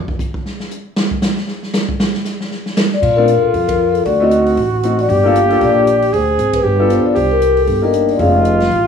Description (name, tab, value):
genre	jazz, small-group swing and bop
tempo	232 BPM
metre	4/4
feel	swing 57% on 8ths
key	Bb major from 3.0 s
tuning	A4 = 440 Hz
part	swinging big-band drum kit	drums	0.1-8.8 s	crash cymbal, hi-hat, kick drum, ride cymbal, snare drum	-20 LUFS	right 1 dB	none
part	vibraphone with soft mallets	melody	2.9-8.6 s	A4 to F5	-15 LUFS	left 5 dB	none
part	breathy trumpet	second line	3.0-8.9 s	F4 to Ab4	-17 LUFS	right 3 dB	none
part	upright bass	bass	3.0-8.9 s	F1 to Bb2	-18 LUFS	right 1 dB	none
part	warm baby grand piano	accompaniment	3.2-8.6 s	A3 to A4	-17 LUFS	left 2 dB	none
room	moderate club reverb, RT60 0.8 s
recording	small room reverb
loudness	-12 LUFS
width	side -7 dB against mid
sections	0.0-3.0 A section; 3.0-8.9 B section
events	drum solo 0.0-3.0; band accent 3.7, 6.5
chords	0.0 N.C.; 3.0 Bbmaj7(no3); 4.1 D7b9; 5.1 Gm7; 6.1 Ab(b5, no3); 6.6 G7; 7.2 Cm9; 8.2 F7alt